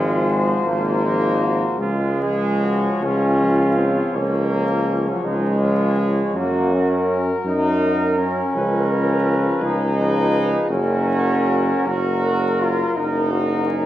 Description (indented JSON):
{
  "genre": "classical, hymn-like piece for brass band",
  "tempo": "46-58 BPM (dotted quarters)",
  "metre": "12/8",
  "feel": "rubato",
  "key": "Db major",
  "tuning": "A4 = 435 Hz",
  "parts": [
    { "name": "mellow cornet", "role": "melody", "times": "0.0-13.9 s", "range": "Bb4 to Db5", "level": "-28 LUFS", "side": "left 4 dB", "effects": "none" },
    { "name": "warm flugelhorn", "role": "second line", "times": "0.0-13.9 s", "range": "Db4 to Bb4", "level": "-26 LUFS", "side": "right 4 dB", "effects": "none" },
    { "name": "clear trombone", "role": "accompaniment", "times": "0.0-13.9 s", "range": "F3 to Gb3", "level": "-29 LUFS", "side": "right 1 dB", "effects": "none" },
    { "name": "warm trombone section", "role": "accompaniment", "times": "0.0-13.9 s", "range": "Gb3 to Gb4", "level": "-22 LUFS", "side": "left 1 dB", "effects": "none" },
    { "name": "clear tuba", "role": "bass", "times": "0.0-13.9 s", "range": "Gb1 to Gb2", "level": "-20 LUFS", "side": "equal", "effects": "none" }
  ],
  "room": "wet recital hall reverb, RT60 1.5 s",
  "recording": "dark, warm production, vinyl crackle",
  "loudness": "-17 LUFS",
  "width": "side -13 dB against mid",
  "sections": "0.0-13.9 A section",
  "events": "none",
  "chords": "0.0 Ab69; 1.8 Db; 6.3 Gb; 8.5 Db7; 10.7 Gb"
}